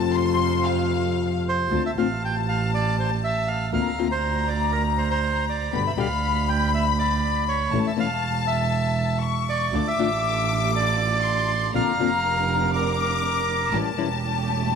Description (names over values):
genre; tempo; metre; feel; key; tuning
tango; 120 BPM; 4/4; rubato; D minor; A4 = 443 Hz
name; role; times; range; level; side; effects
clear studio violin section; second line; 0.0-14.8 s; F5 to D6; -27 LUFS; left 9 dB; none
nylon-string guitar; accompaniment; 0.0-14.1 s; B2 to G4; -26 LUFS; left 9 dB; none
clear studio string section; stabs; 0.0-1.6, 9.7-14.8 s; A3 to C5; -33 LUFS; right 13 dB; none
warm double bass; bass; 0.0-14.8 s; E1 to F2; -26 LUFS; right 4 dB; none
bandoneon; melody; 1.5-13.8 s; Bb4 to G5; -26 LUFS; right 4 dB; tape echo
room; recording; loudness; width
light reverb, studio reverb; 1960s-style stereo with parts hard left and right; -21 LUFS; side -6 dB against mid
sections
0.0-1.7 A section; 1.7-14.8 B section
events
violin section solo 0.0-1.7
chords
0.0 F; 1.7 Dm7; 3.7 Bbadd9/D; 5.7 G; 7.7 A; 9.7 Dm; 11.7 Bbadd9; 13.7 A7